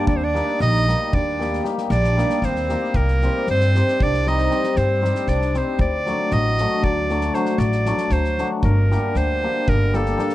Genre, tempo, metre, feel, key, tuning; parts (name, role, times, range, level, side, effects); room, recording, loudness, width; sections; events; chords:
balkan folk, Balkan wedding band; 232 BPM (eighths); 11/8; straight; A4 = 440 Hz
bright clarinet; melody; 0.0-10.3 s; A4 to Eb5; -23 LUFS; right 2 dB
accordion; second line; 0.0-5.8 s; Bb3 to Eb4; -28 LUFS; right 5 dB; light tremolo tuning
cimbalom; accompaniment; 0.0-10.3 s; F#3 to G4; -24 LUFS; left 3 dB
upright bass; bass; 0.1-10.1 s; G1 to G2; -21 LUFS; equal
loose indie drum kit; percussion; 0.1-10.3 s; kick drum, snare drum; -26 LUFS; equal
little or no reverb; -17 LUFS; side -15 dB against mid
0.0-5.8 A section; 5.8-10.3 A section
0.1 Eb; 2.9 Cm; 5.8 D; 8.6 Gm